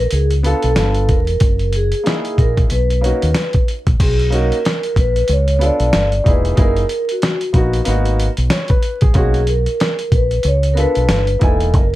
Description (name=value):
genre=hip hop, jazz-hop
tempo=93 BPM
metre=4/4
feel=swing 59% on 16ths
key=B major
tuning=A4 = 440 Hz
part: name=vibraphone with soft mallets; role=melody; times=0.0-12.0 s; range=F#4 to D5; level=-19 LUFS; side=equal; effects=plate reverb
part: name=deep dub fingered electric bass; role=bass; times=0.0-12.0 s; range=E1 to D#2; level=-17 LUFS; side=equal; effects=none
part: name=dusty soul sampler-style drum kit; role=drums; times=0.1-11.9 s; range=crash cymbal, hi-hat, kick drum, snare drum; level=-16 LUFS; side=equal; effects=none
part: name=warm upright piano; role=accompaniment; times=0.4-11.8 s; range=A#2 to G#5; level=-23 LUFS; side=equal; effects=plate reverb
room=light reverb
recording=vinyl crackle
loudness=-13 LUFS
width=side -16 dB against mid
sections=0.0-4.0 A section; 4.0-12.0 A section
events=none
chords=0.1 C#5; 0.8 G9; 1.4 F#13; 2.7 Bmaj9; 5.3 Bm9b5; 5.9 G9; 6.6 F#13; 7.9 G#m9; 9.2 Bmaj7; 10.4 Bm9b5; 11.1 Gadd9